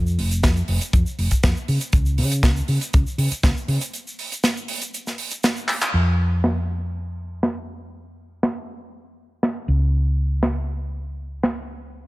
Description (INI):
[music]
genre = nu-disco, nu disco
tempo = 120 BPM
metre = 4/4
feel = straight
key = unclear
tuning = A4 = 440 Hz
[part]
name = hollow-body short-scale fingered electric bass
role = bass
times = 0.0-12.1 s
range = F1 to Db3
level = -21 LUFS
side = equal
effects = none
[part]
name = tight funk drum kit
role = drums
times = 0.1-11.5 s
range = crash cymbal, handclaps, hi-hat, shaker, snare drum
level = -24 LUFS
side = right 1 dB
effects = low-pass filter on hats, low-pass filter on cymbals, low-pass filter on snare, low-pass filter on perc, low-pass filter on room
[part]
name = kick drum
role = drums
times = 0.4-3.5 s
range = none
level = -18 LUFS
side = equal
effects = none
[sound]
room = little or no reverb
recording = none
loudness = -19 LUFS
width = side -19 dB against mid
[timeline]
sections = 0.0-5.9 A section; 5.9-12.1 B section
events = break 3.9-5.9; drum fill 5.7; band accent 5.8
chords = none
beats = 0.43 0.93 1.43 | 1.93 2.43 2.93 3.43 | 3.93 4.43 4.93 5.43 | 5.93 6.43 6.93 7.43 | 7.93 8.43 8.93 9.43 | 9.93 10.43 10.93 11.43 | 11.93